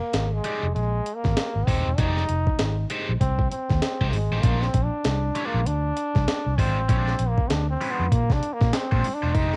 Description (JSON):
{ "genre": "funk", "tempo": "98 BPM", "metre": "4/4", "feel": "swing 60% on 16ths", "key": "unclear", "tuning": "A4 = 442 Hz", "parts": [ { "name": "clear trombone", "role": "melody", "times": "0.0-9.6 s", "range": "Ab3 to Eb4", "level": "-31 LUFS", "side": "equal", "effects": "tube saturation, cassette tape" }, { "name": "vintage muted fingered electric bass", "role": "bass", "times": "0.1-9.6 s", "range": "Eb1 to C3", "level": "-27 LUFS", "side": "equal", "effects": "none" }, { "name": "breakbeat sampler-style drum kit", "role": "drums", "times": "0.1-9.6 s", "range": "hi-hat, kick drum, snare drum", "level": "-27 LUFS", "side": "equal", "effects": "none" }, { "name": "cranked stack guitar", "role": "accompaniment", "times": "0.4-9.5 s", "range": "Ab3 to D5", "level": "-33 LUFS", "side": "equal", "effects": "overdrive, phaser, cassette tape" }, { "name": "tambourine", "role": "percussion", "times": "9.4-9.5 s", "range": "none", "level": "-52 LUFS", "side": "equal", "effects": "none" } ], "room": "digital ambience", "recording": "home recording on cassette", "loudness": "-24 LUFS", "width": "mono", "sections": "0.0-9.6 A section", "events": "trombone solo 0.0-9.6", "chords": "0.0 Fm9 (rootless); 4.4 Bb9" }